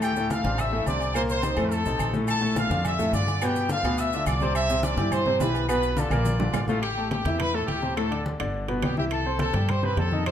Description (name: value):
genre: latin, salsa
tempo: 211 BPM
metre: 4/4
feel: straight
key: unclear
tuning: A4 = 440 Hz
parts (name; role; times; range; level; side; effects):
- clear trumpet section; melody; 0.0-10.3 s; F4 to E6; -28 LUFS; equal; none
- clear baby grand piano; accompaniment; 0.0-10.3 s; A2 to C6; -28 LUFS; left 2 dB; none
- upright bass; bass; 0.0-10.3 s; G1 to G2; -29 LUFS; equal; none
- agogo bells and timbales; percussion; 0.0-10.3 s; none; -36 LUFS; right 7 dB; none
- claves; percussion; 0.0-10.3 s; none; -42 LUFS; left 5 dB; none
- congas; percussion; 0.0-10.3 s; none; -32 LUFS; left 1 dB; none
- maracas; percussion; 0.0-6.8 s; none; -45 LUFS; left 6 dB; none
room: moderate large studio reverb, RT60 1.3 s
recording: dark, warm production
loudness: -22 LUFS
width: side -9 dB against mid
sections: 0.0-6.8 A section; 6.8-10.3 B section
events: drum fill 6.1-6.8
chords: 0.0 Dm7; 1.2 Cm7; 1.7 F7; 2.3 Bbmaj7; 3.4 G7; 4.6 Cmaj7; 5.7 Bm7b5; 6.3 Bb; 6.8 Am9; 8.0 D5; 8.5 G; 9.1 Cmaj7